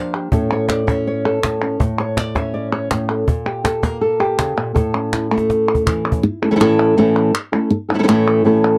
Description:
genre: flamenco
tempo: 162 BPM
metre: 4/4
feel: straight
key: A phrygian dominant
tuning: A4 = 442 Hz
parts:
  - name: flamenco guitar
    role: melody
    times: 0.0-8.8 s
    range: A2 to F5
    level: -18 LUFS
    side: equal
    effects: none
  - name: palmas hand claps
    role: percussion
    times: 0.1-8.8 s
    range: none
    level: -25 LUFS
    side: equal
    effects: none
  - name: cajon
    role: percussion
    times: 0.3-6.2 s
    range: none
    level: -23 LUFS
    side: equal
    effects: none
room: light reverb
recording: dry, close 1970s-style studio recording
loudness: -17 LUFS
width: mono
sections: 0.0-6.2 A section; 6.2-8.8 B section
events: drum fill 5.1-6.2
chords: 0.3 A; 3.3 Bb5; 4.8 A

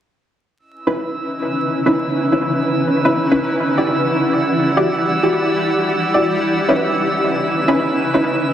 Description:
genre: drum and bass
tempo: 165 BPM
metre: 4/4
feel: swing 54% on 16ths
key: unclear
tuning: A4 = 439 Hz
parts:
  - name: drifting glass-harmonics texture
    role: texture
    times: 0.8-8.5 s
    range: E6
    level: -24 LUFS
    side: right 4 dB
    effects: chorus, built-in reverb
  - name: orchestra-hit-like synth stab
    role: stabs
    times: 0.9-8.2 s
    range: C#4 to D5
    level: -19 LUFS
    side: equal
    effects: built-in reverb, dub echo
room: moderate lush hall reverb, RT60 2.7 s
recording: dense, heavily limited modern master, vinyl crackle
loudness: -15 LUFS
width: side -10 dB against mid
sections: 0.6-8.5 A section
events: none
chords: 0.6 C#m9; 3.5 Em9; 6.4 C#m9

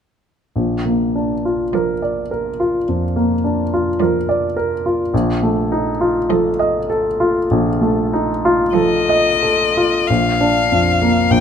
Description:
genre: classical, slow romantic movement for piano trio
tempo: 42-54 BPM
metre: 4/4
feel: rubato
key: Bb major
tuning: A4 = 439 Hz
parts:
  - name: warm baby grand piano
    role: accompaniment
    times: 0.6-11.4 s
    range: Bb1 to Eb5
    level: -15 LUFS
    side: equal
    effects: none
  - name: muted violin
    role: melody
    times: 1.7-11.4 s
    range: D5 to G5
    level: -17 LUFS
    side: left 5 dB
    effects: none
  - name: muted cello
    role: second line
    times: 1.7-9.8 s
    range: F3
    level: -22 LUFS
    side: right 11 dB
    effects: none
room: light reverb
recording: close, detailed microphones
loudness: -15 LUFS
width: side -8 dB against mid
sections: 0.6-10.1 A section; 10.1-11.4 B section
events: none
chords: 0.6 Bb; 5.1 F7/Bb; 10.1 Bb

